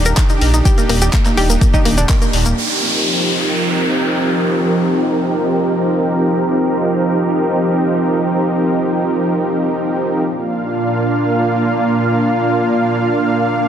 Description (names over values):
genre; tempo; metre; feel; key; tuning
progressive house; free time; none; none; unclear; A4 = 440 Hz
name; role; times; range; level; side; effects
supersaw pad; sustained chords; 0.0-13.7 s; Bb2 to F5; -15 LUFS; right 1 dB; sidechain pumping, low-pass filter
dark detuned saw bass; bass; 0.0-2.5 s; Eb1 to Bb1; -15 LUFS; equal; tube saturation, sidechain pumping
analog pluck; arpeggios; 0.1-2.5 s; Bb3 to Bb4; -20 LUFS; equal; chorus, cassette tape, sidechain pumping, tape echo
deep house drum kit; drums; 0.1-2.5 s; handclaps, hi-hat; -24 LUFS; left 1 dB; sidechain pumping on hats
cabasa; percussion; 0.1-2.5 s; none; -27 LUFS; left 5 dB; none
electronic kick drum; drums; 0.2-2.2 s; none; -14 LUFS; equal; none
downlifter; sound effects; 2.6-6.4 s; none; -20 LUFS; equal; none
room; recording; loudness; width
light reverb; dense, heavily limited modern master; -13 LUFS; side -9 dB against mid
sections
0.0-2.6 A section; 2.6-13.7 B section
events
band accent 2.1; filter sweep on supersaw synth 2.6-13.7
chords
0.0 Ebmaj7; 2.6 F7sus4; 10.3 Bb